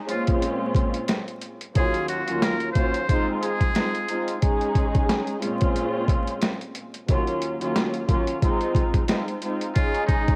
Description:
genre	hip hop, boom-bap hip-hop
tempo	90 BPM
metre	4/4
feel	swing 56% on 16ths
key	Bb minor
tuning	A4 = 438 Hz
part	muted studio string section	accompaniment	0.0-10.4 s	Eb2 to Ab4	-28 LUFS	equal	cassette tape, high-pass filter, low-pass filter
part	trumpet with metal mute	melody	0.1-4.4, 9.8-10.4 s	Eb4 to C5	-31 LUFS	equal	high-pass filter, low-pass filter, cassette tape, tape echo
part	boom bap sampler-style drum kit	drums	0.1-10.4 s	hi-hat, kick drum, snare drum	-26 LUFS	equal	overdrive, cassette tape
room	digital ambience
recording	home recording on cassette, vinyl crackle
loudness	-24 LUFS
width	mono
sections	0.0-10.4 A section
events	none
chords	0.1 Bbm7; 1.8 Ebm7; 3.1 Fm7; 4.4 Absus4; 5.4 Bbm7; 7.1 Ebm7; 8.4 Fm7; 9.8 Absus4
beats	0.42 1.09 | 1.76 2.42 3.09 3.76 | 4.42 5.09 5.76 6.42 | 7.09 7.76 8.42 9.09 | 9.76

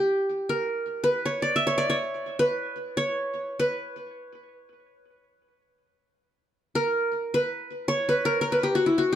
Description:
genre	Arabic maqam ensemble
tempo	free time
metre	none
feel	none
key	unclear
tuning	A4 = 440 Hz
part	qanun	solo	0.0-9.2 s	E4 to E5	-24 LUFS	equal	tape echo
room	wet studio reverb, RT60 0.6 s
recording	none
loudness	-24 LUFS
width	side -10 dB against mid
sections	0.0-9.2 A section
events	none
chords	none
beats	free time

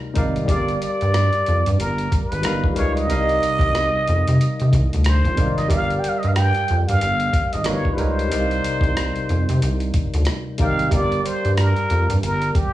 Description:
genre	R&B, neo-soul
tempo	92 BPM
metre	4/4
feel	swing 60% on 16ths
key	C minor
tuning	A4 = 439 Hz
part	barky tine electric piano	accompaniment	0.0-12.7 s	C3 to G5	-25 LUFS	equal	overdrive, slow stereo tremolo
part	rubbery square bass	bass	0.2-12.5 s	G1 to C3	-20 LUFS	equal	none
part	boom bap sampler-style drum kit	drums	0.2-12.7 s	hi-hat, kick drum, rim click	-23 LUFS	equal	none
part	trumpet with plunger mute	melody	0.5-12.7 s	G4 to G5	-23 LUFS	equal	tape echo
room	light reverb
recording	small room reverb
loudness	-17 LUFS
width	side -14 dB against mid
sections	0.0-12.7 A section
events	none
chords	0.5 Gm7; 2.4 G7alt; 3.1 Cm11; 5.7 Gm7; 7.7 G7alt; 8.3 Cm11; 10.9 Gm7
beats	| 0.48 1.13 1.78 2.44 | 3.09 3.74 4.39 5.04 | 5.70 6.35 7.00 7.65 | 8.30 8.96 9.61 10.26 | 10.91 11.56 12.22

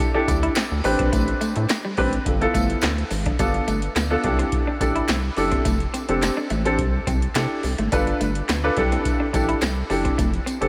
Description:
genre	early-eighties boogie funk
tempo	106 BPM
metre	4/4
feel	straight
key	C major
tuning	A4 = 439 Hz
part	warm baby grand piano	accompaniment	0.0-10.7 s	B3 to B4	-26 LUFS	equal	lush chorus
part	tambourine	percussion	0.0-10.6 s	none	-41 LUFS	equal	none
part	electric guitar through a small old amp	riff	0.1-10.6 s	G3 to E4	-32 LUFS	equal	subtle chorus
part	rubbery square bass	bass	0.3-10.7 s	F1 to C3	-28 LUFS	equal	none
part	electro analog drum machine	drums	0.3-10.7 s	handclaps, hi-hat, kick drum, snare drum	-27 LUFS	equal	none
room	moderate huge ambient reverb, RT60 4.7 s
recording	dreamy mix soaked in reverb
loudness	-22 LUFS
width	mono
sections	0.0-3.4 A section; 3.4-10.7 B section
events	none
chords	0.0 C69; 0.8 Am11; 2.3 G13; 3.4 G7; 4.2 C69; 5.7 F6; 6.8 C69; 7.9 G7; 8.8 C69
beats	0.00 0.56 | 1.13 1.69 2.26 2.83 | 3.39 3.96 4.52 5.09 | 5.66 6.22 6.79 7.35 | 7.92 8.49 9.05 9.62 | 10.18

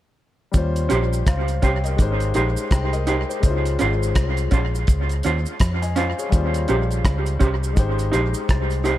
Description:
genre	lovers rock reggae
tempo	83 BPM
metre	4/4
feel	swing 60% on 16ths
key	Ab major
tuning	A4 = 440 Hz
part	warm concert grand piano	accompaniment	0.5-9.0 s	G3 to Ab5	-27 LUFS	left 4 dB	dub echo
part	vintage muted fingered electric bass	bass	0.5-9.0 s	Ab1 to F2	-22 LUFS	equal	none
part	cloth-damped thuddy drum kit	drums	0.5-9.0 s	hi-hat, kick drum, rim click	-21 LUFS	equal	none
part	cabasa	percussion	0.5-9.0 s	none	-40 LUFS	right 7 dB	dub echo
part	electric guitar through a small old amp	stabs	0.9-9.0 s	Db4 to C5	-25 LUFS	right 3 dB	tremolo, dub echo
room	small room ambience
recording	none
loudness	-18 LUFS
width	side -14 dB against mid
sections	0.5-9.0 A section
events	none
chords	0.5 Eb13; 2.0 Abmaj7; 3.4 Dbmaj7; 6.3 Eb13; 7.8 Abmaj7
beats	| 0.54 1.27 1.99 2.71 | 3.44 4.16 4.88 5.60 | 6.32 7.04 7.77 8.49

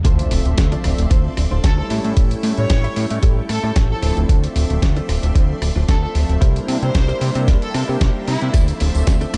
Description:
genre	nu-disco, nu disco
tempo	113 BPM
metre	4/4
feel	swing 54% on 16ths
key	D minor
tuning	A4 = 440 Hz
part	warm analog pad	accompaniment	0.0-9.4 s	F3 to E5	-29 LUFS	equal	chorus, sidechain pumping, delay
part	string machine, full ensemble	sustained chords	0.0-9.4 s	A4 to C#6	-36 LUFS	equal	phaser, ensemble chorus, sidechain pumping
part	direct-recorded clean electric guitar	riff	0.0-9.4 s	D4 to A5	-34 LUFS	equal	analog chorus, low-pass filter, delay
part	fat analog bass	bass	0.0-9.4 s	D1 to C3	-21 LUFS	equal	none
part	dusty soul sampler-style drum kit	drums	0.0-9.4 s	hi-hat, rim click, snare drum	-29 LUFS	equal	low-pass filter on toms, studio reverb, low-pass filter on hats, low-pass filter on snare
part	electronic kick drum	drums	0.0-9.2 s	none	-18 LUFS	equal	studio reverb
part	impact	sound effects	0.1-2.2 s	none	-29 LUFS	equal	none
part	clear studio violin section	melody	1.6-8.6 s	E4 to C#5	-30 LUFS	equal	vintage 12-bit sampler grit, analog delay
part	tambourine and congas	percussion	8.5-9.4 s	none	-34 LUFS	equal	none
room	little or no reverb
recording	nothing above 10.7 kHz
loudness	-18 LUFS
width	mono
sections	0.0-9.4 A section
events	drop 0.0-9.4; impact 0.0-2.2; clean electric guitar fill 3.5-4.3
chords	0.0 Dm7; 1.9 A7; 4.0 Dm7; 6.4 C7; 8.5 Dm7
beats	| 0.05 0.58 1.11 1.64 | 2.17 2.70 3.23 3.76 | 4.29 4.83 5.36 5.89 | 6.42 6.95 7.48 8.01 | 8.54 9.07

